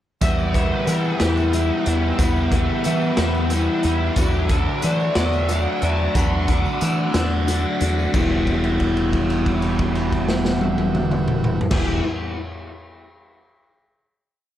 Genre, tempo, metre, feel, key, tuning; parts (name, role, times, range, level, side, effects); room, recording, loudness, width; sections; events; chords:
psychedelic rock; 60 BPM (dotted quarters); 6/8; straight; E minor; A4 = 438 Hz
overdriven combo organ; sustained chords; 0.2-12.0 s; F#4 to F#5; -30 LUFS; right 4 dB
overdriven electric guitar; riff; 0.2-12.0 s; D3 to E4; -21 LUFS; left 1 dB; flanger, analog delay
deep dub picked electric bass; bass; 0.2-12.0 s; E1 to E3; -23 LUFS; equal
raw garage drum kit; drums; 0.2-11.9 s; crash cymbal, hi-hat, kick drum, snare drum, toms; -23 LUFS; equal
tambourine; percussion; 0.2-8.4 s; -39 LUFS; left 2 dB
light reverb, small room ambience; echo-heavy mix; -18 LUFS; side -12 dB against mid
0.2-8.1 groove; 8.1-12.1 final chord
held note 8.1-11.7
0.2 Emadd9; 4.2 Dadd9/E; 8.1 Emadd9